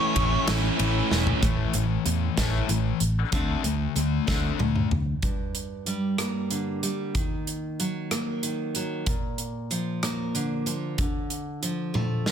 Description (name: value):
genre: quiet-loud alternative rock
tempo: 63 BPM (dotted quarters)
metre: 6/8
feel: straight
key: G minor from 5.2 s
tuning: A4 = 438 Hz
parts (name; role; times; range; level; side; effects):
- thick fuzz guitar; riff; 0.0-4.9 s; A2 to E4; -29 LUFS; left 15 dB; distortion
- thick fuzz guitar; riff; 0.0-1.4 s; A2 to E4; -28 LUFS; right 15 dB; distortion
- fingered electric bass; bass; 0.2-5.1 s; E1 to E2; -26 LUFS; equal; none
- big rock drum kit; drums; 0.2-12.3 s; hi-hat, kick drum, ride cymbal, rim click, snare drum, toms; -28 LUFS; equal; soft clipping on snare
- picked steel-string acoustic guitar; arpeggios; 1.4-12.3 s; G2 to C4; -30 LUFS; right 1 dB; none
room: light reverb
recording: dense, heavily limited modern master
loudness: -24 LUFS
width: side -8 dB against mid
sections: 0.0-1.4 A section; 1.4-5.2 B section; 5.2-12.3 C section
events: drum fill 1.1-1.4, 4.3-5.2, 11.9-12.3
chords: 0.0 A; 1.4 A5; 3.3 D5; 5.2 Gm; 7.2 Ebm; 9.1 Bb; 11.0 Dm